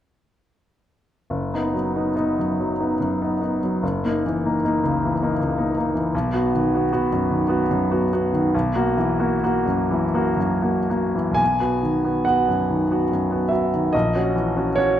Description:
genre	classical, romantic character piece for solo piano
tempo	37-54 BPM (dotted quarters)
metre	6/8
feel	rubato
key	B major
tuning	A4 = 440 Hz
part	clear grand piano	solo	1.3-15.0 s	F#1 to G#5	-19 LUFS	equal	none
room	wet recital hall reverb, RT60 1.4 s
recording	dark, warm production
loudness	-19 LUFS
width	side -11 dB against mid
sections	1.3-11.4 A section; 11.4-15.0 B section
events	none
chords	1.3 B/F#; 3.8 F#6 (rootless); 6.1 B; 8.5 F#7/B; 11.4 B; 13.9 F#7/A#

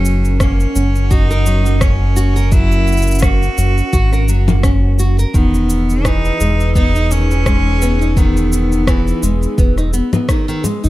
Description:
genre	folktronica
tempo	85 BPM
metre	4/4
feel	swing 56% on 16ths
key	F# mixolydian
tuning	A4 = 440 Hz
part	bright cello	melody	0.0-9.6 s	B3 to F#4	-21 LUFS	equal	ping-pong delay
part	warbly tape-like pad	sustained chords	0.0-10.9 s	C#4 to E6	-24 LUFS	right 1 dB	chorus, built-in reverb
part	nylon-string guitar	arpeggios	0.0-10.9 s	D#3 to A#4	-21 LUFS	equal	vintage 12-bit sampler grit
part	round analog bass	bass	0.0-10.9 s	E1 to G#1	-14 LUFS	equal	tube saturation
part	electronic shaker, rim click and congas	drums	0.1-10.9 s	none	-22 LUFS	left 2 dB	none
part	electronic kick drum	drums	0.4-10.4 s	none	-15 LUFS	equal	none
room	little or no reverb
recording	none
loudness	-12 LUFS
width	side -16 dB against mid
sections	0.0-10.9 A section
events	none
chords	0.0 F#; 5.3 Emaj7

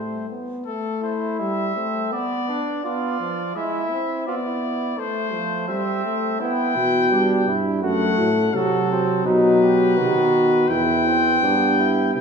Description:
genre	classical, imitative canzona for brass ensemble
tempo	84 BPM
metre	4/4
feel	straight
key	A minor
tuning	A4 = 440 Hz
part	clear trumpet	melody	0.0-12.2 s	A4 to G5	-24 LUFS	left 4 dB	none
part	warm flugelhorn	second line	0.0-12.2 s	A3 to G4	-26 LUFS	right 3 dB	none
part	clear trombone	accompaniment	0.0-12.1 s	D#3 to C4	-24 LUFS	equal	none
part	warm tuba	bass	0.0-0.3, 6.8-12.2 s	E2 to C3	-20 LUFS	equal	none
room	wet scoring stage reverb, RT60 1.9 s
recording	studio reverb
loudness	-18 LUFS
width	side -6 dB against mid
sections	0.7-12.2 A section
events	none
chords	0.0 Am; 2.1 Bdim; 3.6 E/G#; 5.0 Am; 6.4 Em/B; 7.8 F#dim; 9.3 B; 10.7 Em

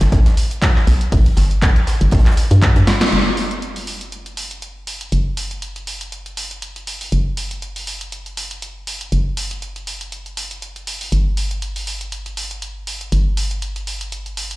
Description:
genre	deep house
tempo	120 BPM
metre	4/4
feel	swing 55% on 16ths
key	unclear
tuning	A4 = 440 Hz
part	hollow knocking FM bass	bass	0.0-14.6 s	F#1 to G2	-18 LUFS	equal	sidechain pumping
part	crisp fusion drum kit	drums	0.0-3.0 s	hi-hat, snare drum	-32 LUFS	right 1 dB	sidechain pumping on hats, high-pass filter on hats, high-pass filter on snare, high-pass filter on room
part	punchy analog drum machine	drums	0.0-14.6 s	handclaps, hi-hat, snare drum	-23 LUFS	equal	none
part	electronic kick drum	drums	0.1-2.7 s	none	-14 LUFS	equal	none
room	light reverb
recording	played on a big sound system in a bare room, large studio reverb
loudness	-16 LUFS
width	side -19 dB against mid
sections	0.0-3.1 A section; 3.1-14.6 B section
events	drum fill 2.9; band accent 3.0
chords	none

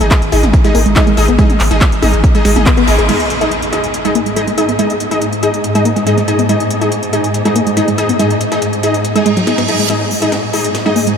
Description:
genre	driving peak-time techno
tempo	141 BPM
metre	4/4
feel	straight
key	unclear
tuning	A4 = 440 Hz
part	rave stab	stabs	0.0-11.1 s	D#4 to D#5	-15 LUFS	left 1 dB	chorus, built-in reverb, sidechain pumping, diffuse ambient delay
part	saturated sub bass	bass	0.0-3.1 s	G#1	-17 LUFS	equal	overdrive, sidechain pumping, low-pass filter
part	techno drum kit	drums	0.0-11.2 s	crash cymbal, handclaps, hi-hat, snare drum, toms	-20 LUFS	equal	sidechain pumping on hats, high-pass filter on hats, high-pass filter on snare, sidechain pumping on toms, high-pass filter on toms, sidechain pumping on cymbals, high-pass filter on cymbals, high-pass filter on room
part	dusty soul sampler-style drum kit	drums	0.1-9.8 s	hi-hat, snare drum	-31 LUFS	equal	none
part	electronic kick drum	drums	0.1-2.8 s	none	-12 LUFS	equal	none
part	warbly dusty pluck	riff	0.3-11.1 s	F#3 to G#4	-17 LUFS	right 1 dB	chorus, sidechain pumping, diffuse ambient delay
part	swarming drone	drone	4.2-11.2 s	G#2	-19 LUFS	equal	built-in reverb, sidechain pumping
part	impact, reverse cymbal and riser	sound effects	3.1-4.8, 9.2-11.2 s	none	-23 LUFS	right 3 dB	none
room	moderate huge ambient reverb, RT60 7.5 s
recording	dreamy mix soaked in reverb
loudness	-10 LUFS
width	side -7 dB against mid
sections	0.0-3.1 A section; 3.1-9.9 B section; 9.9-11.2 C section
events	band accent 2.7; impact 3.1-4.8; filter sweep on synth arpeggio sound 3.1-9.9, 9.9-11.2; reverse cymbal 9.2-9.9; build-up 9.9-11.2; drum fill 9.9-11.2; riser 9.9-11.2; filter sweep 9.9-11.2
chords	0.0 G#5

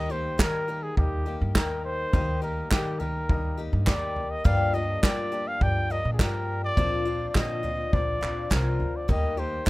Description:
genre	indie folk with a building arrangement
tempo	104 BPM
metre	4/4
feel	straight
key	Eb major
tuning	A4 = 440 Hz
part	mellow trumpet	melody	0.0-9.7 s	G4 to G5	-30 LUFS	equal	none
part	clear concert grand piano	accompaniment	0.0-9.7 s	G1 to G5	-41 LUFS	left 2 dB	none
part	picked twelve-string acoustic guitar	accompaniment	0.0-9.7 s	G2 to G4	-32 LUFS	left 4 dB	none
part	upright bass	bass	0.0-9.7 s	Bb1 to G3	-29 LUFS	equal	none
part	unplugged drum kit	drums	0.4-9.7 s	kick drum, snare drum, toms	-27 LUFS	equal	none
part	group handclap	percussion	0.4-9.7 s	none	-32 LUFS	right 2 dB	none
room	little or no reverb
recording	rough home demo mix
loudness	-24 LUFS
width	side -19 dB against mid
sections	0.0-9.7 A section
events	none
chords	0.0 Eb; 4.5 Gm7; 6.8 Bbadd9; 9.1 Eb

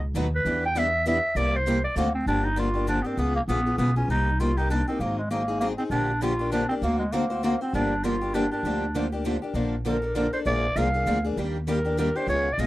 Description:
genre	acoustic string swing (jazz manouche)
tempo	198 BPM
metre	3/4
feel	swing 58% on 8ths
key	G minor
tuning	A4 = 440 Hz
part	growling clarinet	melody	0.0-12.7 s	Ab3 to G5	-26 LUFS	right 1 dB	none
part	upright bass	bass	0.0-12.7 s	G1 to E2	-28 LUFS	equal	none
part	picked steel-string acoustic guitar	accompaniment	0.1-12.7 s	B2 to C5	-28 LUFS	left 3 dB	none
part	picked steel-string acoustic guitar	accompaniment	0.2-2.1, 5.9-12.7 s	B2 to C5	-33 LUFS	right 6 dB	none
room	little or no reverb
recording	dry, close 1970s-style studio recording, lossy compression artefacts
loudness	-23 LUFS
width	side -17 dB against mid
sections	0.0-2.3 A section; 2.3-9.6 B section; 9.6-12.7 C section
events	none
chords	0.5 Em7; 1.4 C7; 2.0 D7; 2.3 Gm7; 3.2 C#7; 4.1 Cm7; 5.0 Ab9; 5.9 Bb6; 6.8 Daug7; 7.7 Gm7; 9.6 Bbmaj7; 10.5 Bb7; 11.4 Ebmaj7

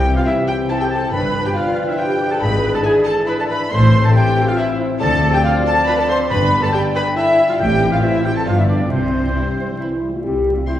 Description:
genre	cinematic, playful, whimsical film cue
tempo	139 BPM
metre	3/4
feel	straight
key	C major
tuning	A4 = 443 Hz
part	clear oboe	second line	0.0-10.8 s	C5 to C6	-26 LUFS	right 1 dB	none
part	dark clarinet	second line	0.0-10.8 s	G3 to E5	-25 LUFS	equal	none
part	silver concert flute	second line	0.0-10.8 s	C5 to C6	-24 LUFS	left 1 dB	none
part	warm studio violin section	second line	0.0-10.7 s	C5 to C6	-23 LUFS	left 2 dB	none
part	warm studio viola section	accompaniment	0.0-10.7 s	C4 to C5	-22 LUFS	right 1 dB	none
part	mellow French horn section	sustained chords	0.0-10.8 s	D3 to G4	-24 LUFS	left 2 dB	none
part	concert harp	arpeggios	0.0-10.8 s	G2 to F6	-25 LUFS	left 3 dB	none
part	rich studio cello section	bass	0.0-10.8 s	D2 to C4	-23 LUFS	equal	none
part	rich studio double bass section	bass	0.0-10.6 s	G1 to D2	-21 LUFS	equal	none
part	clear studio violin section	melody	0.3-10.8 s	C4 to C6	-36 LUFS	left 2 dB	none
room	wet scoring stage reverb, RT60 2.1 s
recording	heard from further back in the room, vinyl crackle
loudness	-14 LUFS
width	side -12 dB against mid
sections	0.0-10.2 A section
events	none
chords	0.0 C; 1.1 G7; 2.4 E7/G#; 3.7 Am; 5.0 Dm7; 6.3 G5; 7.6 Am7; 8.5 G7; 8.9 C

